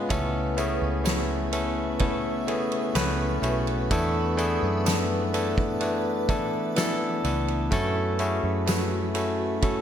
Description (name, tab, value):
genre	pop ballad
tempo	63 BPM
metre	4/4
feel	straight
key	unclear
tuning	A4 = 440 Hz
part	bell-like tine electric piano	accompaniment	0.0-9.8 s	C#3 to B4	-26 LUFS	left 2 dB	none
part	granular cloud pad	sustained chords	0.0-9.8 s	F#4 to D6	-35 LUFS	right 2 dB	built-in reverb
part	vintage muted fingered electric bass	bass	0.0-9.8 s	E1 to G#2	-30 LUFS	right 1 dB	none
part	loose indie drum kit	drums	0.1-9.8 s	kick drum, ride cymbal, snare drum	-30 LUFS	right 1 dB	gated reverb
part	tambourine	percussion	0.1-9.8 s	none	-41 LUFS	right 13 dB	none
room	moderate lush hall reverb, RT60 2.3 s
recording	bright 1980s-style digital production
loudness	-23 LUFS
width	side -9 dB against mid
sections	0.0-9.8 A section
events	none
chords	0.1 Aadd9/C#; 3.9 E7sus4; 7.7 F#m7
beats	| 0.10 1.06 2.01 2.96 | 3.92 4.87 5.82 6.77 | 7.72 8.68 9.63